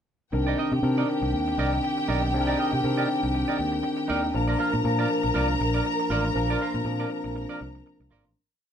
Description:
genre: disco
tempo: 120 BPM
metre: 4/4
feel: swing 56% on 16ths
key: C minor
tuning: A4 = 439 Hz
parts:
  - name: rich studio string section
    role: second line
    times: 0.3-8.3 s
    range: G4 to Bb5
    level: -30 LUFS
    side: left 1 dB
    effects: none
  - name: barky tine electric piano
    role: accompaniment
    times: 0.3-8.4 s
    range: Eb3 to Bb4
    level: -27 LUFS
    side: left 1 dB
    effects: overdrive
  - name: semi-hollow electric guitar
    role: accompaniment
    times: 0.3-8.3 s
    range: Eb4 to F5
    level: -31 LUFS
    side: right 4 dB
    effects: none
  - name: fingered electric bass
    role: bass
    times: 0.3-8.3 s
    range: Ab1 to C3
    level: -28 LUFS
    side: equal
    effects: none
room: wet small room reverb, RT60 0.5 s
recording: band playing live in one room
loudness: -23 LUFS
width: side -8 dB against mid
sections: 0.3-8.4 groove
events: fade-out 6.4-8.4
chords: 0.3 Cm9; 4.3 Bb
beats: | 0.33 0.83 1.33 1.84 | 2.34 2.84 3.34 3.85 | 4.35 4.85 5.35 5.86 | 6.36 6.86 7.36 7.86

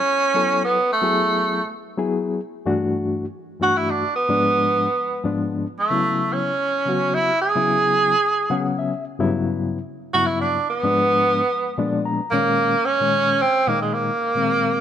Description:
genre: jazz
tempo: 74 BPM (dotted quarters)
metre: 6/8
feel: straight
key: unclear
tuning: A4 = 440 Hz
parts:
  - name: clear tenor saxophone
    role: melody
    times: 0.0-14.8 s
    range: Ab3 to G#4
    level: -19 LUFS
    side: right 2 dB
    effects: none
  - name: reed electric piano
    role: accompaniment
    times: 0.3-14.8 s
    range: G2 to A#5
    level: -24 LUFS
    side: left 4 dB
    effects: fast tremolo
room: moderate plate reverb, RT60 2.8 s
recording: none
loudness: -18 LUFS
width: side -9 dB against mid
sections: 0.0-12.3 A section; 12.3-14.8 B section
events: reed electric piano fill 8.2-9.1, 11.5-12.3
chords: 0.0 A6; 0.9 F#m9; 2.5 G5; 4.2 G#dim7; 5.8 A6 (rootless); 9.1 Gmaj7; 10.7 G#dim7; 11.5 A#7b9; 12.3 Eb5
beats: 0.08 | 0.89 1.71 | 2.52 3.34 | 4.15 4.97 | 5.79 6.60 | 7.42 8.24 | 9.05 9.87 | 10.69 11.51 | 12.32 13.14 | 13.96 14.78

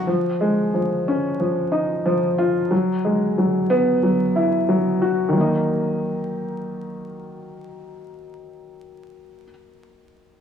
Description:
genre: hip hop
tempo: 91 BPM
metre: 4/4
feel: swing 62% on 16ths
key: Eb minor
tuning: A4 = 442 Hz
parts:
  - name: dark upright piano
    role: accompaniment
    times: 0.0-10.4 s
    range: Eb3 to Gb4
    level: -19 LUFS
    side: equal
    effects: high-pass filter, low-pass filter
room: light reverb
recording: home recording on cassette, vinyl crackle, small room ambience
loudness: -18 LUFS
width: side -8 dB against mid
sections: 0.0-5.3 A section; 5.3-8.0 B section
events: none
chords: 0.1 Eb9sus4; 2.7 Gb9sus4; 5.3 Ebm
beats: | 0.07 0.73 1.39 2.05 | 2.71 3.37 4.03 4.69 | 5.35 6.01 6.67 7.33

